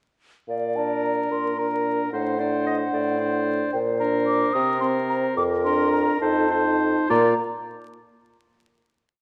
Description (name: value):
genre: quick classical-period movement for wind quintet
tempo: 67-75 BPM (dotted quarters)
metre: 6/8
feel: straight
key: Bb major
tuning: A4 = 440 Hz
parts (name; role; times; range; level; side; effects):
- mellow hollow baroque flute; melody; 0.5-7.4 s; F5 to Eb6; -30 LUFS; equal; none
- warm clarinet; accompaniment; 0.5-7.3 s; F4 to Eb5; -31 LUFS; equal; none
- mellow bassoon; bass; 0.5-7.3 s; F2 to C3; -28 LUFS; equal; none
- warm oboe; second line; 0.8-7.3 s; Bb4 to D5; -31 LUFS; equal; none
- warm French horn; accompaniment; 0.8-7.3 s; Bb3 to Eb4; -30 LUFS; equal; none
room: moderate scoring stage reverb, RT60 1.7 s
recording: dark, warm production, vinyl crackle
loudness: -23 LUFS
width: mono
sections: 0.5-7.1 A section; 7.1-8.8 final chord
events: none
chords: 0.5 Bb; 2.1 D7/A; 3.7 Bbadd9; 4.5 Cm7; 5.4 Bb/F; 6.2 F7; 7.1 Bb5